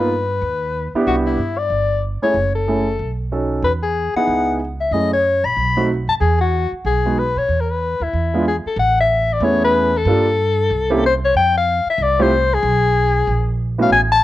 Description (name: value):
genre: jazz, small-group swing and bop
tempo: 187 BPM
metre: 4/4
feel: swing 61% on 8ths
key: E major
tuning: A4 = 440 Hz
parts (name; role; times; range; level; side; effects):
- mellow soprano saxophone; melody; 0.0-14.2 s; E4 to B5; -17 LUFS; left 3 dB; none
- warm concert grand piano; accompaniment; 0.0-13.9 s; G3 to A4; -19 LUFS; right 2 dB; cassette tape
- upright bass; bass; 0.0-14.2 s; F#1 to B2; -21 LUFS; right 2 dB; none
room: moderate spring reverb, RT60 1.1 s, small room ambience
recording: home recording on cassette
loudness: -15 LUFS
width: side -14 dB against mid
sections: 0.0-8.8 A section; 8.8-14.2 B section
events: none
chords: 0.0 Gaug; 1.1 Cmaj9; 2.3 F#m9; 3.0 B7; 3.6 Emaj7; 4.3 C#m9; 4.9 F#m9; 5.6 B7b9; 6.2 E; 8.1 E7b9; 8.8 Amaj7; 10.1 Gm9; 10.7 C7b9; 11.3 F5; 12.6 G#m/B; 13.3 Bbmmaj7